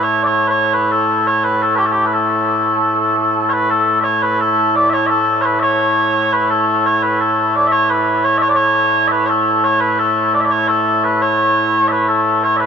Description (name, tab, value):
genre	scottish traditional, Scottish pipe music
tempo	86 BPM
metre	2/4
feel	straight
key	A major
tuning	A4 = 438 Hz
part	mellow small bagpipes	solo	0.0-12.7 s	A2 to E5	-12 LUFS	equal	none
room	wet huge ambient reverb, RT60 8.5 s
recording	heard from further back in the room, nothing above 10.4 kHz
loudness	-12 LUFS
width	side -7 dB against mid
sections	0.0-3.5 A section; 3.5-12.7 A section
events	none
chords	none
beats	0.04 | 0.74 1.44 | 2.13 2.83 | 3.53 4.22 | 4.92 5.62 | 6.32 7.02 | 7.71 8.41 | 9.11 9.81 | 10.50 11.20 | 11.90 12.60